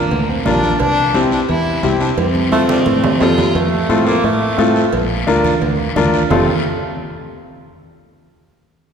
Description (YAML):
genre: latin, cumbia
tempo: 174 BPM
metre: 4/4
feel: straight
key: F major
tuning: A4 = 438 Hz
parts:
  - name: clear fiddle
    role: melody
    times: 0.0-3.6 s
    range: Bb3 to F4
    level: -18 LUFS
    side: equal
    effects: none
  - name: fingered electric bass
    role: bass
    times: 0.1-6.5 s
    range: F1 to A2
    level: -20 LUFS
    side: equal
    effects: none
  - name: congas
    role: percussion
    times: 0.1-6.4 s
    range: none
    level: -24 LUFS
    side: right 3 dB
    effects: none
  - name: cowbell and timbales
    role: percussion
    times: 0.1-6.4 s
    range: none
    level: -24 LUFS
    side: right 4 dB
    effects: none
  - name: guiro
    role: percussion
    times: 0.1-6.4 s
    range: none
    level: -29 LUFS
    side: left 5 dB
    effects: none
  - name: bright upright piano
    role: accompaniment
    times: 0.5-6.5 s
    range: C4 to Bb4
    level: -18 LUFS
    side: left 2 dB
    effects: none
  - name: clear tenor saxophone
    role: second line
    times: 2.5-6.5 s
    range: G3 to Bb3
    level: -21 LUFS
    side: right 3 dB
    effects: none
room: wet concert hall reverb, RT60 2.4 s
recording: recorded in a church or concert hall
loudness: -13 LUFS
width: side -7 dB against mid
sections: 0.0-3.6 A section; 3.6-6.3 B section; 6.3-7.7 C section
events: drum fill 2.2-3.6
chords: 0.0 Bb; 0.8 C; 2.2 F; 4.9 Bb; 6.3 F